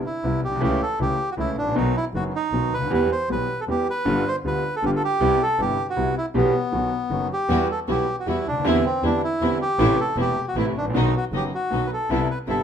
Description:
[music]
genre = tango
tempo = 157 BPM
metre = 3/4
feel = rubato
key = E minor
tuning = A4 = 440 Hz
[part]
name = bandoneon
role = melody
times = 0.1-12.6 s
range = B3 to C5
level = -24 LUFS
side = right 1 dB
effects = none
[part]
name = clear concert grand piano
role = accompaniment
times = 0.2-12.6 s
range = E1 to G4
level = -24 LUFS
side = equal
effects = none
[part]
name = rich double bass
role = bass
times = 0.2-12.6 s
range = E1 to E2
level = -28 LUFS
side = equal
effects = none
[part]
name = warm chamber string section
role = stabs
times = 7.5-12.6 s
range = F#3 to F#4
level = -30 LUFS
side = left 2 dB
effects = none
[sound]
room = wet studio reverb, RT60 0.8 s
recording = minimal, uncompressed stereo recording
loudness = -20 LUFS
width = side -8 dB against mid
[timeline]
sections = 0.0-12.6 A section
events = none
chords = 0.0 Cmaj7; 0.6 A/C#; 1.8 B; 2.9 Em; 4.1 G7; 5.2 Cmaj7; 6.4 Em/B; 6.7 B; 7.5 Emadd9; 8.6 Cadd9/E; 9.8 Am; 10.9 B; 12.1 Cmaj7

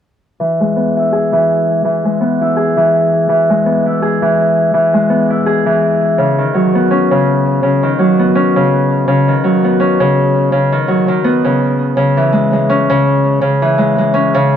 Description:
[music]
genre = folktronica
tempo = 83 BPM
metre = 4/4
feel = swing 56% on 16ths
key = E major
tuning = A4 = 440 Hz
[part]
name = Celtic harp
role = arpeggios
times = 0.4-14.6 s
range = C#3 to G#4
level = -10 LUFS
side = equal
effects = vintage 12-bit sampler grit, low-pass filter, tape echo
[sound]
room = light reverb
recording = none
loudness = -10 LUFS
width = side -9 dB against mid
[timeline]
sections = 0.4-14.6 A section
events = filter sweep on harp 0.4-14.6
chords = 0.4 E; 6.2 Badd9; 12.0 C#m

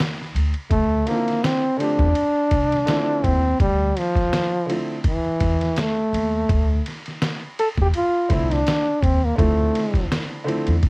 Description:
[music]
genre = hip hop, jazz-hop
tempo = 83 BPM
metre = 4/4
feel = swing 58% on 16ths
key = D minor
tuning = A4 = 440 Hz
[part]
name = trip hop sampler-style drum kit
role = drums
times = 0.0-10.9 s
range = hi-hat, kick drum, ride cymbal, snare drum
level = -24 LUFS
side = equal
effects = cassette tape
[part]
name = upright bass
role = bass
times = 0.3-10.8 s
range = C2 to E2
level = -22 LUFS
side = equal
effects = none
[part]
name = warm trombone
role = melody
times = 0.7-10.1 s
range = E3 to A4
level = -20 LUFS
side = equal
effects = none
[part]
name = clear upright piano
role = accompaniment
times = 1.1-10.7 s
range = D3 to A4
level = -26 LUFS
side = right 1 dB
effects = cassette tape
[sound]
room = light reverb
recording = home recording on cassette, vinyl crackle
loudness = -18 LUFS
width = side -29 dB against mid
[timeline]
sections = 0.7-10.9 A section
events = break 0.0-0.7; trombone solo 0.7-10.9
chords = 0.0 N.C.; 0.7 Dm9

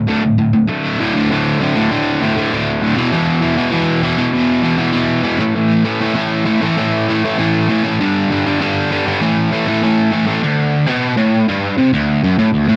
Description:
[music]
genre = punk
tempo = 197 BPM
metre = 4/4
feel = straight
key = unclear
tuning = A4 = 440 Hz
[part]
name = distorted electric guitar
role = solo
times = 0.0-12.8 s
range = D2 to A3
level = -15 LUFS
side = equal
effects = distortion
[sound]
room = little or no reverb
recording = home recording on cassette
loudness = -15 LUFS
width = mono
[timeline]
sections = 0.7-10.4 A section; 10.4-12.8 B section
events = none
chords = 0.0 D5; 3.0 E5; 5.4 A5; 8.0 G5; 9.2 A5; 10.4 D5

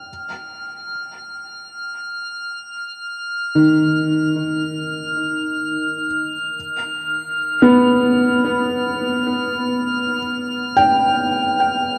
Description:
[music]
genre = ambient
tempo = free time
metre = none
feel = none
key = unclear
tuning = A4 = 441 Hz
[part]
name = felt-muted upright piano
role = arpeggios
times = 0.0-12.0 s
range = Eb3 to G5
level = -19 LUFS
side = equal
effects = delay
[part]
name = drifting glass-harmonics texture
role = texture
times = 0.0-12.0 s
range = F6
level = -26 LUFS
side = equal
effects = chorus, built-in reverb
[sound]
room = wet huge ambient reverb, RT60 7.8 s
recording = dark, warm production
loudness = -19 LUFS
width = mono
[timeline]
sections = 0.0-12.0 A section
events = none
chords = 0.1 Ebsus2; 6.5 G7

